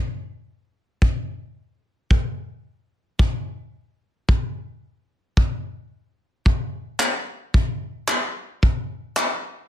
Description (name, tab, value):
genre	pop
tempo	110 BPM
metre	4/4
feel	straight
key	none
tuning	none
part	unplugged drum kit	drums	1.0-9.3 s	handclaps, kick drum	-20 LUFS	equal	none
room	light reverb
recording	dense, heavily limited modern master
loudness	-21 LUFS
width	side -11 dB against mid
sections	0.0-9.7 A section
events	none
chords	none